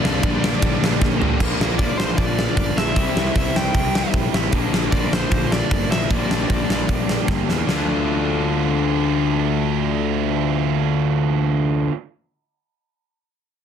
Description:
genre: punk rock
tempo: 153 BPM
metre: 4/4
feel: straight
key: D minor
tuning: A4 = 439 Hz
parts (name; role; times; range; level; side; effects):
- smooth overdriven lead guitar; melody; 0.0-7.3 s; C5 to G5; -28 LUFS; left 2 dB; tape echo
- high-gain distorted guitar; riff; 0.0-1.9 s; G2 to Bb3; -29 LUFS; equal; distortion
- overdriven semi-hollow guitar; riff; 0.0-11.9 s; Bb2 to A4; -24 LUFS; left 10 dB; none
- tight distorted guitar; riff; 0.0-11.9 s; Bb2 to F4; -25 LUFS; right 12 dB; distortion
- fuzz picked electric bass; bass; 0.0-11.9 s; G1 to E2; -24 LUFS; equal; overdrive
- big rock drum kit; drums; 0.1-7.8 s; crash cymbal, hi-hat, kick drum, ride cymbal, snare drum, toms; -21 LUFS; equal; soft clipping on kick
room: light reverb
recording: dense, heavily limited modern master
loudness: -17 LUFS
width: side -8 dB against mid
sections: 0.0-1.4 A section; 1.4-7.7 B section; 7.7-10.8 C section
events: drum fill 1.0-1.4, 7.3-7.7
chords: 0.0 Gm/Bb; 1.4 Bb; 3.0 C; 4.5 Bb; 6.1 Gm/Bb; 7.7 Dm

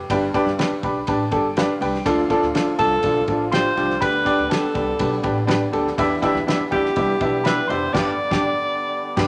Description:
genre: uptempo 1960s-style soul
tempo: 122 BPM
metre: 4/4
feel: straight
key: unclear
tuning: A4 = 440 Hz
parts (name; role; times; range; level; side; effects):
- warm upright piano; accompaniment; 0.0-9.3 s; G2 to B5; -23 LUFS; equal; none
- upright bass; bass; 0.0-9.3 s; F1 to E2; -32 LUFS; equal; none
- cloth-damped thuddy drum kit; drums; 0.1-9.3 s; crash cymbal, hi-hat, kick drum, ride cymbal, snare drum; -29 LUFS; equal; none
- overdriven tonewheel organ; sustained chords; 2.1-9.3 s; D3 to F4; -34 LUFS; equal; none
- bright alto saxophone; melody; 2.8-9.3 s; G4 to D5; -24 LUFS; equal; none
- steel pan; second line; 2.8-7.9 s; G5 to C6; -31 LUFS; equal; none
room: moderate large studio reverb, RT60 1.3 s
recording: none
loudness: -20 LUFS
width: mono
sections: 0.0-9.3 A section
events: upright piano fill 0.6-2.1; band accent 7.9-9.3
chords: 0.1 G; 2.1 Dm; 4.0 G; 6.0 Em7; 7.9 G

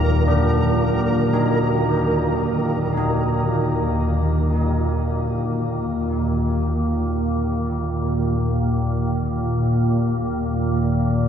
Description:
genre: dark ambient drone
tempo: free time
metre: none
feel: none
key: unclear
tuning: A4 = 440 Hz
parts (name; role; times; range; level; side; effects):
- old church bells; arpeggios; 0.0-9.2 s; Eb3 to Eb4; -26 LUFS; left 1 dB; diffuse ambient delay, shimmer reverb
- organ-like drone; drone; 0.0-11.3 s; Eb2 to Bb2; -19 LUFS; equal; ensemble chorus, built-in reverb
- flickering grainy texture; texture; 0.0-3.0 s; Bb4; -28 LUFS; right 4 dB; built-in reverb, shimmer reverb
room: wet cathedral reverb, RT60 7.2 s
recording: in a vast, echoing space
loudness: -18 LUFS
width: side -8 dB against mid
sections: 0.0-3.0 A section; 3.0-11.3 B section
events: none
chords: 0.0 Eb5

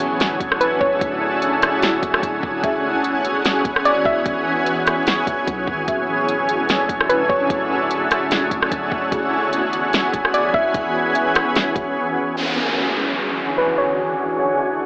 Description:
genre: hip hop, atmospheric cloud-rap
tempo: 148 BPM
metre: 4/4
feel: half-time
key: unclear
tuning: A4 = 441 Hz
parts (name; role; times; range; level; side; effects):
- shimmering ambient pad; sustained chords; 0.0-14.9 s; D2 to G#4; -19 LUFS; equal; chorus, built-in reverb, sidechain pumping, low-pass filter
- long sustained 808-style bass; bass; 0.0-12.0 s; D1 to B1; -36 LUFS; equal; none
- smooth R&B drum kit; drums; 0.0-11.9 s; hi-hat, kick drum, rim click, snare drum; -20 LUFS; equal; none
- impact and downlifter; sound effects; 0.0-1.0, 12.4-14.9 s; none; -24 LUFS; equal; none
- folk marimba with medium mallets; texture; 0.0-12.3 s; C#4 to E5; -28 LUFS; equal; none
- soft round pluck; melody; 0.6-1.0, 3.9-4.2, 7.1-7.5, 10.3-10.7, 13.6-14.0 s; B4 to E5; -21 LUFS; equal; chorus, low-pass filter, tape echo
room: moderate digital room reverb, RT60 1.2 s, digital ambience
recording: AM radio sound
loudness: -16 LUFS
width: side -27 dB against mid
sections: 0.0-12.4 A section; 12.4-14.9 B section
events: impact 0.0-1.0; break 12.0-12.4; filter sweep 12.4-14.9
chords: 0.0 Dmaj9#11; 2.6 E6; 5.9 Dmaj9#11; 9.1 E6; 12.4 Dmaj9#11

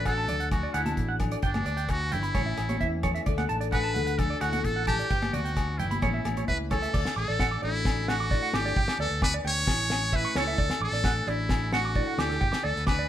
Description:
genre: highlife guitar band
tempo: 131 BPM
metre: 4/4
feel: straight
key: D major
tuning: A4 = 440 Hz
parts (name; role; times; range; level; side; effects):
- trumpet with metal mute; melody; 0.0-13.1 s; D4 to C#5; -30 LUFS; right 1 dB; none
- picked steel-string acoustic guitar; accompaniment; 0.0-13.1 s; G2 to A4; -36 LUFS; left 4 dB; none
- fingered electric bass; bass; 0.0-13.0 s; G1 to E2; -32 LUFS; equal; none
- clean electric guitar; arpeggios; 0.1-13.1 s; A4 to D6; -32 LUFS; right 5 dB; none
- damped 70s drum kit; drums; 0.1-13.0 s; crash cymbal, hi-hat, kick drum, rim click, snare drum; -30 LUFS; equal; none
- agogo bells; percussion; 0.1-13.0 s; none; -38 LUFS; left 6 dB; none
- congas; percussion; 0.3-6.8 s; none; -35 LUFS; equal; none
room: light reverb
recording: band playing live in one room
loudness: -25 LUFS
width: side -11 dB against mid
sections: 0.0-6.9 A section; 6.9-13.1 B section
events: none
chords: 0.0 D; 1.4 G; 2.4 A; 3.3 D; 5.1 G; 6.0 A; 6.9 D; 8.8 G; 9.7 A; 10.6 D; 12.4 G

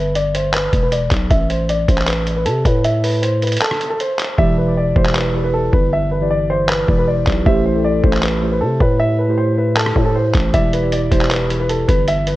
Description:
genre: hip hop, trap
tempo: 156 BPM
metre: 4/4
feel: half-time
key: E minor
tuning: A4 = 440 Hz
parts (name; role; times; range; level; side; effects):
- dark concert grand piano; melody; 0.0-12.4 s; A4 to E5; -19 LUFS; equal; low-pass filter, digital delay
- growling 808-style bass; bass; 0.0-12.4 s; E1 to C3; -19 LUFS; equal; none
- lo-fi sampler-style drum kit; drums; 0.2-12.4 s; handclaps, hi-hat, kick drum, rim click; -18 LUFS; equal; none
- muted felt-like synth keys; accompaniment; 4.4-12.4 s; E3 to D5; -20 LUFS; right 1 dB; chorus, phaser, low-pass filter
room: digital ambience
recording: worn, warbling old tape, cassette tape, warbly pitch drift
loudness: -14 LUFS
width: side -16 dB against mid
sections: 0.0-12.4 A section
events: filter sweep 0.0-4.4; break 3.6-4.4; hi-hats muted 4.4-10.5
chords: 0.0 Em7; 1.3 Am; 4.4 Em7; 7.5 Am7; 10.5 Em7

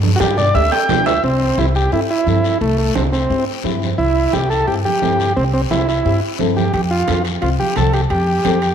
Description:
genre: latin, cumbia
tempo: 175 BPM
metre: 4/4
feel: straight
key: C major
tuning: A4 = 443 Hz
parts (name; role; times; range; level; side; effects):
- upright bass; bass; 0.0-8.7 s; C2 to G2; -19 LUFS; equal; none
- congas; percussion; 0.0-8.6 s; none; -24 LUFS; right 12 dB; none
- combo organ; melody; 0.2-8.7 s; A3 to G5; -17 LUFS; right 1 dB; slapback echo
- flamenco guitar; accompaniment; 0.2-8.6 s; B3 to C5; -25 LUFS; left 10 dB; none
- guiro; percussion; 0.2-8.7 s; none; -30 LUFS; left 12 dB; none
- cowbell and timbales; percussion; 0.6-1.1, 6.7-8.7 s; none; -27 LUFS; right 12 dB; none
room: moderate echo chamber reverb, RT60 2.5 s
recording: 1960s-style stereo with parts hard left and right, lossy compression artefacts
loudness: -14 LUFS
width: side -8 dB against mid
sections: 0.0-1.2 A section; 1.2-8.7 B section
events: transistor combo organ solo 0.0-1.2; drum fill 0.5-1.2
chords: 0.0 G; 1.2 C; 6.7 F

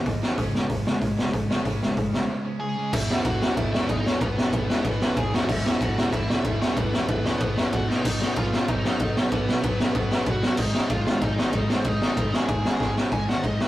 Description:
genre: punk rock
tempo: 188 BPM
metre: 4/4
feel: straight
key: unclear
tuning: A4 = 441 Hz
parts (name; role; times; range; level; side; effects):
- distorted electric guitar; riff; 0.0-13.7 s; E2 to Eb4; -36 LUFS; left 5 dB; none
- high-gain distorted guitar; riff; 0.0-13.7 s; E2 to Eb4; -41 LUFS; equal; none
- sludgy distorted guitar; riff; 0.0-13.7 s; E2 to Eb4; -32 LUFS; right 3 dB; overdrive
- fuzz picked electric bass; bass; 0.0-13.7 s; E1 to F#2; -35 LUFS; equal; none
- raw garage drum kit; drums; 0.1-13.7 s; crash cymbal, hi-hat, kick drum, ride cymbal, snare drum, splash cymbal; -23 LUFS; equal; none
- bluesy overdriven lead guitar; melody; 2.6-13.7 s; B3 to Ab5; -31 LUFS; equal; distortion
room: little or no reverb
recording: rough rehearsal-room recording, warm saturation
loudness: -22 LUFS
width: side -15 dB against mid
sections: 0.0-2.9 A section; 2.9-13.1 B section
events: break 2.3-2.9; drum fill 7.9, 12.8-13.1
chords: 0.4 Db/F; 2.9 E5; 7.9 B; 10.6 Ab5

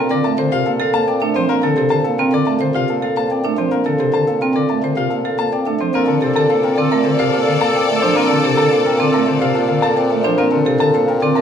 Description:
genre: classical, minimalist pattern music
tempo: 108 BPM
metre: 4/4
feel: straight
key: Bb major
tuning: A4 = 441 Hz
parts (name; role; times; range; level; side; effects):
- warm baby grand piano; melody; 0.0-11.4 s; A4 to A5; -21 LUFS; left 8 dB; none
- pipe organ, stopped flute; accompaniment; 0.0-11.4 s; C3 to C4; -21 LUFS; left 2 dB; none
- marimba with hard mallets; arpeggios; 0.0-11.4 s; C4 to C5; -18 LUFS; right 3 dB; none
- clear bassoon; bass; 0.0-11.4 s; Bb2; -22 LUFS; right 1 dB; none
- rich symphonic string section; sustained chords; 5.9-10.2 s; A4 to D5; -22 LUFS; left 4 dB; none
- clear clarinet; second line; 6.0-10.2 s; A4; -25 LUFS; right 2 dB; none
room: wet recital hall reverb, RT60 1.6 s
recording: none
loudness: -14 LUFS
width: side -8 dB against mid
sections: 0.0-5.9 A section; 5.9-11.4 B section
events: none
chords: 0.0 Bbmaj7

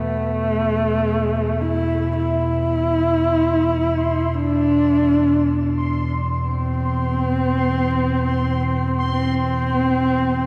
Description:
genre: dark ambient drone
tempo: free time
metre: none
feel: none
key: unclear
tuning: A4 = 439 Hz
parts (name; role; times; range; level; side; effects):
- dark horsehead fiddle; melody; 0.0-10.5 s; A3 to E4; -22 LUFS; equal; shimmer reverb, dub echo
- deep rumbling drone; drone; 0.0-10.5 s; E2 to B2; -24 LUFS; equal; built-in reverb
- bubbling stepped-filter texture; texture; 3.4-10.5 s; C6; -32 LUFS; equal; chorus, built-in reverb, shimmer reverb
room: wet plate reverb, RT60 3.2 s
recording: echo-heavy mix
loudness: -20 LUFS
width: mono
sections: 0.0-10.5 A section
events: none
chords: 0.0 E5

